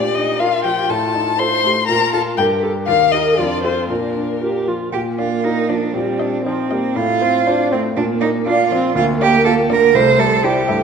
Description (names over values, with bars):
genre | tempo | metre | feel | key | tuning
quick classical-period movement for piano quartet | 120 BPM | 2/4 | straight | Bb major | A4 = 440 Hz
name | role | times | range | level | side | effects
warm violin | melody | 0.0-10.8 s | Bb4 to C6 | -19 LUFS | left 8 dB | none
rich cello | second line | 0.0-10.8 s | Bb3 to C5 | -18 LUFS | right 6 dB | none
clear baby grand piano | accompaniment | 0.0-10.8 s | C2 to F5 | -21 LUFS | left 2 dB | none
dark viola | accompaniment | 0.0-10.8 s | F3 to Bb4 | -21 LUFS | right 3 dB | none
room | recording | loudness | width
moderate scoring stage reverb, RT60 1.9 s | minimal, uncompressed stereo recording | -14 LUFS | side -6 dB against mid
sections
0.0-4.9 A section; 4.9-10.8 A section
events
none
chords
0.0 Bb; 0.9 F7/A; 1.9 Bb5; 2.4 Gmadd9; 2.9 Eb; 3.4 F; 3.9 Bb; 5.9 Cm7/Bb; 7.0 F/A; 8.0 Bb; 9.0 Bb/D; 9.9 C